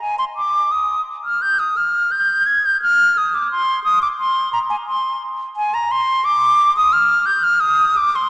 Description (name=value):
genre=classical, baroque-style fantasia for unaccompanied flute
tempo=87 BPM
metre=4/4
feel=rubato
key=Eb major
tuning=A4 = 442 Hz
part: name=bright silver concert flute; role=solo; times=0.0-8.3 s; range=Ab5 to Ab6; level=-14 LUFS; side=equal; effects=none
room=wet cathedral reverb, RT60 4.1 s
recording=small speaker sound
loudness=-14 LUFS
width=side -22 dB against mid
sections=0.0-8.3 A section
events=none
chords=none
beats=| 0.01 0.72 1.42 2.11 | 2.82 3.51 4.20 4.89 | 5.57 6.25 6.93 7.62